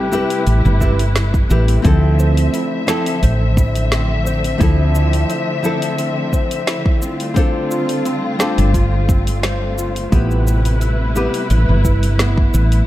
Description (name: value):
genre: sunset chillout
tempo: 87 BPM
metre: 4/4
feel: straight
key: D dorian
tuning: A4 = 439 Hz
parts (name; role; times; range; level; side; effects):
- mellow flugelhorn; melody; 0.0-1.2 s; G4; -26 LUFS; left 2 dB; digital delay
- nylon-string guitar; accompaniment; 0.0-11.5 s; F3 to B4; -22 LUFS; moving between left 4 dB and right 5 dB; auto-pan, digital delay
- warm symphonic string section; sustained chords; 0.0-12.9 s; C3 to E5; -22 LUFS; left 1 dB; none
- woody fretless electric bass; bass; 0.0-12.8 s; G1 to D2; -15 LUFS; equal; ensemble chorus
- deep house drum kit; drums; 0.1-12.9 s; hi-hat, shaker, snare drum; -25 LUFS; equal; none
- electronic kick drum; drums; 0.8-12.5 s; none; -17 LUFS; equal; none
- Celtic harp; arpeggios; 1.8-12.9 s; B3 to C5; -25 LUFS; left 2 dB; digital delay
room: small room reverb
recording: dark, warm production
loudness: -14 LUFS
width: side -14 dB against mid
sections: 0.0-12.9 A section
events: none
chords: 0.0 Am9; 1.8 Dm9; 7.0 G9sus4; 10.1 Am9